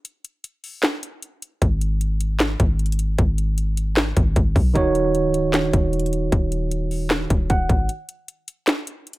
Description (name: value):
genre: hip hop, trap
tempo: 153 BPM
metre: 4/4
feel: half-time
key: unclear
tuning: A4 = 440 Hz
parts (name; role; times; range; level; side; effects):
- trap drum kit; drums; 0.0-9.2 s; handclaps, hi-hat, kick drum, snare drum; -21 LUFS; equal; none
- warm 808-style bass; bass; 1.6-7.9 s; C#1 to B1; -22 LUFS; equal; none
- tine electric piano; accompaniment; 4.7-7.9 s; D#3 to F#5; -21 LUFS; right 3 dB; overdrive, low-pass filter
room: little or no reverb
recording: none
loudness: -18 LUFS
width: side -19 dB against mid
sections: 0.0-9.2 A section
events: break 0.0-1.6, 7.9-9.2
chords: 0.0 N.C.; 4.8 D#m7; 7.9 N.C.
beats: | 0.05 0.44 0.83 1.23 | 1.62 2.01 2.40 2.79 | 3.19 3.58 3.97 4.36 | 4.75 5.15 5.54 5.93 | 6.32 6.71 7.11 7.50 | 7.89 8.28 8.68 9.07